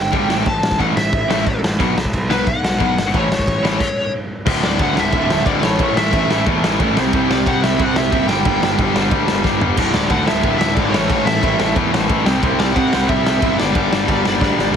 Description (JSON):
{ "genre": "punk rock", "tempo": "181 BPM", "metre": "4/4", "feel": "straight", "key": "D major", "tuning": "A4 = 439 Hz", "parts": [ { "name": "bluesy overdriven lead guitar", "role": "melody", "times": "0.0-14.8 s", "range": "B4 to A5", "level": "-21 LUFS", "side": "equal", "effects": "distortion" }, { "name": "fuzz picked electric bass", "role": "bass", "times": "0.0-14.7 s", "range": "D1 to C3", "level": "-22 LUFS", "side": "equal", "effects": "overdrive" }, { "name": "raw garage guitar", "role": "riff", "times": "0.1-14.8 s", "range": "D2 to C4", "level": "-21 LUFS", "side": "right 12 dB", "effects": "overdrive" }, { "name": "tight distorted guitar", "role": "riff", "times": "0.1-14.7 s", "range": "D2 to C4", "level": "-20 LUFS", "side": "left 13 dB", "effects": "distortion" }, { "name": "raw garage drum kit", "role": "drums", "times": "0.1-14.7 s", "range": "crash cymbal, kick drum, ride cymbal, snare drum, toms", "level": "-19 LUFS", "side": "equal", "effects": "none" } ], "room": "little or no reverb", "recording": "heavily compressed radio sound, multiband compression", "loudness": "-14 LUFS", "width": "side -8 dB against mid", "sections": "0.0-4.5 A section; 4.5-14.8 B section", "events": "stop 3.8-4.5; drum fill 9.4-9.8, 14.4-14.8", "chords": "0.3 A5; 1.8 B5; 3.1 A; 4.5 D5; 5.6 A; 7.0 C; 8.3 G5; 9.8 D5; 10.9 A; 12.3 C; 13.6 G5", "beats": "0.13 | 0.47 0.80 1.13 1.47 | 1.80 2.13 2.47 2.80 | 3.13 3.47 3.80 4.13 | 4.47 4.80 5.13 5.46 | 5.79 6.13 6.46 6.79 | 7.12 7.45 7.79 8.12 | 8.45 8.78 9.11 9.44 | 9.77 10.10 10.44 10.77 | 11.10 11.43 11.76 12.09 | 12.42 12.75 13.09 13.42 | 13.75 14.08 14.41 14.75" }